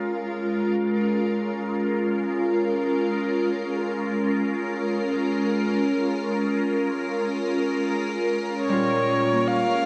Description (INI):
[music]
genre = ambient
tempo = free time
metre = none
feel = none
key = Bb dorian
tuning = A4 = 441 Hz
[part]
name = evolving wavetable pad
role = sustained chords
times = 0.0-9.9 s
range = Bb2 to Bb4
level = -25 LUFS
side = equal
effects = ensemble chorus, built-in reverb, phaser
[part]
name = rich electric violin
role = melody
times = 8.6-9.9 s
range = Db5 to F5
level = -25 LUFS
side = equal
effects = none
[part]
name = Celtic harp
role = arpeggios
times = 8.7-9.9 s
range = G3 to F4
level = -29 LUFS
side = equal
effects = none
[sound]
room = wet huge ambient reverb, RT60 7.4 s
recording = worn, warbling old tape, cassette tape, warbly pitch drift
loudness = -24 LUFS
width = mono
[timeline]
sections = 0.0-9.9 A section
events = none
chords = 0.0 Bbm7; 8.6 Eb7/Bb (rootless)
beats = free time